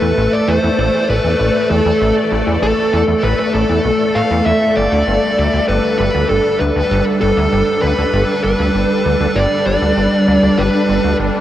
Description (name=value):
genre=ambient, sequencer-driven space music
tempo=98 BPM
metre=4/4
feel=straight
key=unclear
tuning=A4 = 440 Hz
part: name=dark smooth lead guitar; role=melody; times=0.0-11.2 s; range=A4 to F5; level=-16 LUFS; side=equal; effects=overdrive, shimmer reverb, analog delay
part: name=evolving wavetable pad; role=sustained chords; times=0.0-11.4 s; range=G3 to D5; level=-16 LUFS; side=equal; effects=ensemble chorus, built-in reverb, shimmer reverb
part: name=plucky analog bass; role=riff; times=0.0-11.3 s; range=G1 to A2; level=-18 LUFS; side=equal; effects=analog chorus, analog delay
room=wet huge ambient reverb, RT60 8.0 s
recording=worn, warbling old tape, cassette tape, warbly pitch drift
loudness=-12 LUFS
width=side -12 dB against mid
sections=0.0-11.4 A section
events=none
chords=0.0 Asus2; 4.8 Gadd9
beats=0.48 1.10 1.71 | 2.32 2.93 3.54 4.16 | 4.77 5.38 5.99 6.61 | 7.22 7.83 8.44 9.05 | 9.67 10.28 10.89